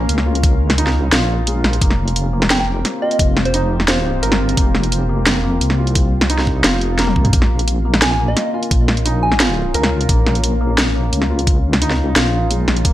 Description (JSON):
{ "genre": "half-time drum and bass", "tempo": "174 BPM", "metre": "4/4", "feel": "half-time", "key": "Bb dorian", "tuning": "A4 = 440 Hz", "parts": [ { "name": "deep dark ambient pad", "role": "sustained chords", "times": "0.0-12.9 s", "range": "C4 to F5", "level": "-25 LUFS", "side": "left 2 dB", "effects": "chorus, built-in reverb, sidechain pumping" }, { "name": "felt-muted upright piano", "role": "arpeggios", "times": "0.0-12.9 s", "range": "F3 to Bb4", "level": "-24 LUFS", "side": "equal", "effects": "tape echo" }, { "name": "deep soft wobble bass", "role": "bass", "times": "0.0-12.9 s", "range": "F1 to Db2", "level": "-18 LUFS", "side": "equal", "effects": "chorus" }, { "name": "drum and bass drum kit", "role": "drums", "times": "0.1-12.9 s", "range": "hi-hat, snare drum, toms", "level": "-17 LUFS", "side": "equal", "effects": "none" }, { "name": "electronic kick drum", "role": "drums", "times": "0.4-12.9 s", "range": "none", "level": "-16 LUFS", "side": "equal", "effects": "none" }, { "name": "soft synth bell", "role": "melody", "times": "2.5-4.1, 8.0-9.5 s", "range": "C5 to Ab5", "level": "-23 LUFS", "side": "right 2 dB", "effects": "chorus, tape echo" } ], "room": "light reverb, digital ambience", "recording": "none", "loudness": "-14 LUFS", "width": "side -14 dB against mid", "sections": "0.0-12.9 A section", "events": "drum fill 7.0-7.3", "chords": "0.0 Bbm; 1.8 Fsus2; 7.3 Bbm" }